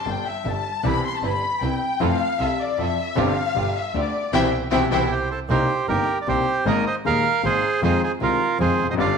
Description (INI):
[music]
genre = tango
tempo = 155 BPM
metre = 3/4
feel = rubato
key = C major, C minor from 5.5 s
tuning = A4 = 440 Hz
[part]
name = warm studio violin section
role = second line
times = 0.0-5.0 s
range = C5 to C6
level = -24 LUFS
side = left 4 dB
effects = none
[part]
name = warm concert grand piano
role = accompaniment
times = 0.1-9.1 s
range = Eb1 to Ab4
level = -25 LUFS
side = left 5 dB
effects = none
[part]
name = clear double bass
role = bass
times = 0.1-9.1 s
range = F1 to F2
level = -28 LUFS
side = right 4 dB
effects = none
[part]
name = rich studio string section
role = stabs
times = 0.8-9.2 s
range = G3 to B4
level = -30 LUFS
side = right 10 dB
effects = none
[part]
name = bandoneon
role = melody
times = 5.1-9.2 s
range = F4 to F5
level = -21 LUFS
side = right 4 dB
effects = none
[sound]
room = wet echo chamber reverb, RT60 1.3 s, small room ambience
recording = 1960s-style stereo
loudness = -19 LUFS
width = side -6 dB against mid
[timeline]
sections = 0.0-5.5 A section; 5.5-9.2 B section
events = violin section solo 0.0-5.5; band accent 4.3-5.5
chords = 0.5 Gsus2; 0.8 Cmaj7; 2.0 Fmaj7; 3.2 G7sus4; 3.6 G7; 4.3 Cmaj7; 5.5 Cm7; 6.7 Absus2; 7.8 Fm7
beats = 0.06 0.45 | 0.84 1.23 1.61 | 2.00 2.39 2.78 | 3.17 3.55 3.94 | 4.33 4.72 5.11 | 5.50 5.89 6.28 | 6.67 7.05 7.44 | 7.83 8.21 8.60 | 8.99